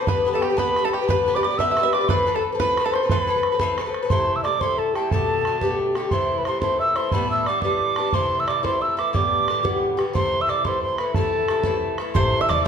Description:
celtic folk, Celtic jig; 119 BPM (dotted quarters); 6/8; straight; A minor; A4 = 440 Hz
bluegrass banjo; second line; 0.0-3.7, 12.2-12.7 s; G4 to E5; -29 LUFS; right 5 dB
mellow baroque flute; second line; 0.0-12.7 s; G4 to E5; -26 LUFS; left 3 dB
Irish bouzouki; accompaniment; 0.0-12.7 s; A2 to B4; -25 LUFS; left 3 dB
mellow hollow wooden whistle; melody; 0.1-12.7 s; G5 to E6; -23 LUFS; right 3 dB
bodhran; percussion; 0.1-12.6 s; -27 LUFS; right 2 dB
upright bass; bass; 12.2-12.6 s; A1 to E2; -25 LUFS; left 1 dB
wet large studio reverb, RT60 1.3 s; band playing live in one room; -19 LUFS; side -7 dB against mid
0.0-4.1 A section; 4.1-12.2 B section
0.1 G; 2.1 Amadd9; 4.1 Am; 5.1 Gadd9; 6.1 Am; 7.1 Gadd9; 8.1 Am; 9.1 Gadd9; 10.1 Am
| 0.08 0.58 | 1.08 1.59 | 2.09 2.59 | 3.10 3.60 | 4.10 4.61 | 5.11 5.61 | 6.12 6.62 | 7.12 7.62 | 8.13 8.63 | 9.14 9.64 | 10.14 10.65 | 11.15 11.65 | 12.15 12.66

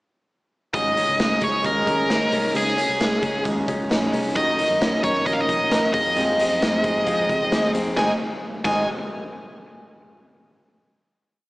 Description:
jangly indie pop; 133 BPM; 4/4; straight; Ab mixolydian; A4 = 440 Hz
high-gain lead guitar; melody; 0.7-8.9 s; Ab4 to Ab5; -22 LUFS; equal; distortion
picked twelve-string acoustic guitar; accompaniment; 0.7-8.8 s; Ab2 to Bb4; -27 LUFS; right 1 dB; slapback echo
direct-recorded clean electric guitar; arpeggios; 0.7-8.8 s; F2 to Bb4; -27 LUFS; left 1 dB; warbly pitch drift, slapback echo
vintage muted picked electric bass; bass; 0.7-8.9 s; Ab1 to Ab2; -36 LUFS; equal
raw garage drum kit; drums; 0.7-8.8 s; crash cymbal, hi-hat, kick drum, snare drum; -25 LUFS; equal
moderate lush hall reverb, RT60 2.2 s; big arena sound, small speaker sound; -19 LUFS; side -21 dB against mid
0.7-8.0 verse; 8.0-9.8 final chord
0.7 Absus4; 2.5 Dbsus2; 4.4 Ebm7; 5.9 Fm7; 8.0 Ab
| 0.74 1.19 1.65 2.10 | 2.55 3.00 3.45 3.90 | 4.36 4.81 5.26 5.71 | 6.16 6.62 7.07 7.52 | 7.97 8.43

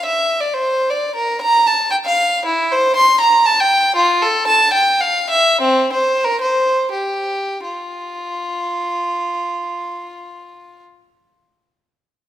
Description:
classical, baroque-style suite movement for unaccompanied violin; 79-123 BPM; 3/4; rubato; F major; A4 = 440 Hz
warm violin; solo; 0.0-10.8 s; C4 to C6; -14 LUFS; equal
moderate recital hall reverb, RT60 1.4 s; minimal, uncompressed stereo recording; -14 LUFS; side -12 dB against mid
0.0-7.6 A section; 7.6-12.0 B section
slowing down 3.2-7.6
0.42 | 0.91 1.40 1.91 | 2.43 2.94 3.44 | 3.94 4.47 5.01 | 5.62 6.25 6.91 | 7.64 8.37 9.11 | 9.85 10.58

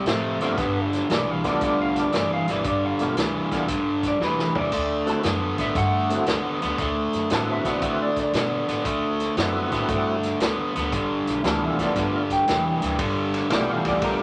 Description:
electric blues shuffle; 116 BPM; 4/4; swing 67% on 8ths; G major; A4 = 440 Hz
electric guitar through a small old amp; melody; 0.0-14.2 s; G4 to A5; -30 LUFS; equal
cranked stack guitar; riff; 0.0-14.2 s; G2 to B3; -27 LUFS; equal; overdrive
breathy tenor saxophone; second line; 0.1-1.0 s; B3 to C4; -33 LUFS; equal
upright bass; bass; 0.1-14.2 s; G1 to D3; -35 LUFS; equal
vintage drum kit; drums; 0.1-14.2 s; hi-hat, kick drum, ride cymbal, snare drum, splash cymbal, toms; -31 LUFS; equal
tonewheel organ; accompaniment; 0.4-14.2 s; A3 to G4; -29 LUFS; equal; overdrive, chorus vibrato, slow rotary speaker
moderate studio ambience, RT60 0.5 s; -24 LUFS; mono
0.0-13.0 A section; 13.0-14.2 B section
drum fill 4.2-4.7; clean electric guitar solo 13.0-14.2
0.0 Csus2; 0.6 G9; 4.7 D9; 10.9 G9
0.07 | 0.58 1.10 1.62 2.13 | 2.65 3.17 3.69 4.20 | 4.72 5.24 5.76 6.27 | 6.79 7.31 7.82 8.34 | 8.86 9.38 9.89 10.41 | 10.93 11.44 11.96 12.47 | 12.99 13.51 14.02

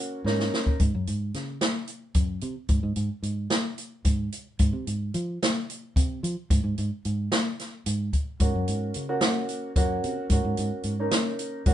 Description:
progressive instrumental, band music in an uneven meter; 221 BPM (eighths); 7/8; straight; Ab mixolydian; A4 = 439 Hz
dark baby grand piano; accompaniment; 0.0-0.7, 8.4-11.7 s; Bb3 to Gb4; -29 LUFS; right 1 dB
fingered electric bass; bass; 0.2-11.7 s; Gb2 to F3; -28 LUFS; right 1 dB
open jazz drum kit; drums; 0.3-11.7 s; hi-hat, kick drum, snare drum; -25 LUFS; equal
light reverb; band playing live in one room, nothing above 10.7 kHz; -24 LUFS; side -12 dB against mid
0.8-11.7 A section
drum fill 0.3-0.8
0.0 Ab7sus4; 0.8 N.C.; 4.6 Ab6; 8.4 Ab7sus4
0.26 0.54 | 0.81 1.08 1.35 1.62 1.89 2.16 2.43 | 2.70 2.97 3.25 3.52 3.79 4.06 4.33 | 4.60 4.87 5.14 5.42 5.69 5.96 6.23 | 6.50 6.77 7.04 7.32 7.59 7.86 8.13 | 8.40 8.67 8.95 9.22 9.49 9.76 10.03 | 10.31 10.58 10.85 11.12 11.39 11.67

